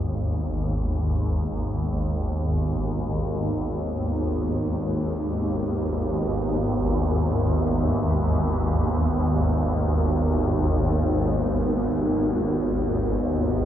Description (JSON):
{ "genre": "dark ambient drone", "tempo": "free time", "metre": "none", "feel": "none", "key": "unclear", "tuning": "A4 = 436 Hz", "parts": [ { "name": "deep dark ambient pad", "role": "sustained chords", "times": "0.0-13.7 s", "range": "B3 to E5", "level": "-30 LUFS", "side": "right 3 dB", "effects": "chorus, built-in reverb" }, { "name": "swarming drone", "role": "drone", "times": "0.0-13.7 s", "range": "G#1 to D#2", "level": "-22 LUFS", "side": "equal", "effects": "built-in reverb, phaser" } ], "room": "wet huge ambient reverb, RT60 7.3 s", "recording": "cassette tape", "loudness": "-22 LUFS", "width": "side -10 dB against mid", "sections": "0.0-13.7 A section", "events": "fade-in on ambient pad 0.0-13.7", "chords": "0.0 G#m; 2.3 Em; 11.0 G#m" }